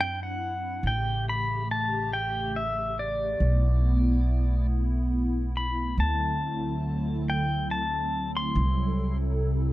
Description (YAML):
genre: acoustic folk-pop ballad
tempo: 70 BPM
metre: 3/4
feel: straight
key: unclear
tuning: A4 = 440 Hz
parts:
  - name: pedal steel guitar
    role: melody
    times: 0.0-9.2 s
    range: D5 to C6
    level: -29 LUFS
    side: left 1 dB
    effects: none
  - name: hollow soft pad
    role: sustained chords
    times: 0.0-9.7 s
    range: C3 to A4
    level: -32 LUFS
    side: equal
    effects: ensemble chorus
  - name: upright bass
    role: bass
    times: 0.0-9.7 s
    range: A1 to F#2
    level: -27 LUFS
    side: equal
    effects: none
room: light reverb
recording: dark, warm production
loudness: -24 LUFS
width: side -16 dB against mid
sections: 0.0-9.7 A section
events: none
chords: 0.0 D7/F#; 0.8 A7; 3.4 B7sus4; 6.0 D7; 8.6 F#m7b5/C